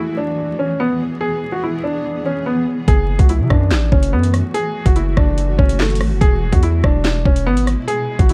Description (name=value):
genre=hip hop, drill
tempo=144 BPM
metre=4/4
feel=half-time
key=unclear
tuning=A4 = 440 Hz
part: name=dark baby grand piano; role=melody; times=0.0-8.3 s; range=A3 to G#4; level=-22 LUFS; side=equal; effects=low-pass filter
part: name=granular cloud pad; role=sustained chords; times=0.0-8.3 s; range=B2 to G#4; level=-29 LUFS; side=equal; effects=built-in reverb
part: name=hard-hitting 808-style bass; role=bass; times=2.9-8.3 s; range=E1 to C#3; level=-19 LUFS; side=equal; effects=none
part: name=drill drum kit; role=drums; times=2.9-8.3 s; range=handclaps, hi-hat, kick drum, rim click, snare drum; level=-18 LUFS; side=equal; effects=none
room=digital ambience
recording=dark, warm production, vinyl crackle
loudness=-17 LUFS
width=mono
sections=0.0-8.3 A section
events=none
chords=0.0 E; 2.9 F#m7; 6.2 E